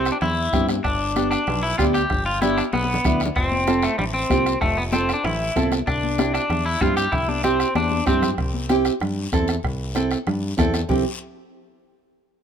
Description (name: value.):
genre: latin, cumbia.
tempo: 191 BPM.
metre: 4/4.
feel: straight.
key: C major.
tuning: A4 = 440 Hz.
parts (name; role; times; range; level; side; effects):
electric guitar at the edge of break-up; melody; 0.0-8.3 s; G3 to G4; -23 LUFS; left 2 dB; spring reverb.
nylon-string guitar; accompaniment; 0.0-11.0 s; B3 to A4; -23 LUFS; right 3 dB; none.
fingered electric bass; bass; 0.0-11.0 s; F1 to G2; -26 LUFS; equal; none.
bombo; percussion; 0.1-11.0 s; none; -27 LUFS; right 1 dB; none.
guiro; percussion; 0.1-11.0 s; none; -36 LUFS; left 6 dB; none.
congas; percussion; 0.2-11.0 s; none; -28 LUFS; left 3 dB; none.
room: light reverb.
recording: minimal, uncompressed stereo recording.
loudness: -19 LUFS.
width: side -8 dB against mid.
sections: 0.0-8.4 A section; 8.4-10.9 B section; 10.9-12.2 C section.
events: drum fill 2.7-3.4, 7.8-8.4.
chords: 0.0 C; 0.8 G; 3.4 F; 5.9 C.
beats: 0.22 0.53 | 0.85 1.16 1.48 1.79 | 2.10 2.42 2.73 3.05 | 3.36 3.67 3.99 4.30 | 4.62 4.93 5.25 5.56 | 5.87 6.19 6.50 6.82 | 7.13 7.44 7.76 8.07 | 8.38 8.70 9.01 9.33 | 9.64 9.95 10.27 10.58 | 10.89.